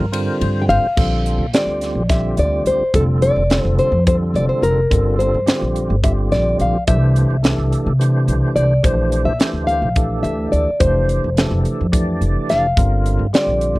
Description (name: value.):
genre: electric jazz fusion.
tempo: 214 BPM (eighths).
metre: 7/8.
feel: straight.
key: Bb lydian.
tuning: A4 = 439 Hz.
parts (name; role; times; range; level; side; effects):
tonewheel organ; accompaniment; 0.0-13.8 s; D3 to D5; -23 LUFS; right 1 dB; slow rotary speaker, overdrive, chorus vibrato.
upright bass; bass; 0.0-13.8 s; F1 to C3; -18 LUFS; equal; none.
tight funk drum kit; drums; 0.1-13.7 s; crash cymbal, hi-hat, kick drum, ride cymbal, snare drum; -18 LUFS; equal; none.
nylon-string guitar; melody; 0.6-13.8 s; A4 to G5; -19 LUFS; left 1 dB; none.
room: little or no reverb.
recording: dry, close 1970s-style studio recording.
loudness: -14 LUFS.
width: side -20 dB against mid.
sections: 1.0-13.8 A section.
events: none.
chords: 0.0 C7sus4/G; 1.0 Bbmaj9; 2.9 Fadd9; 4.9 Gm11; 6.9 C69; 8.8 Bbmaj9#11; 10.8 Fmaj9; 12.8 Gm11.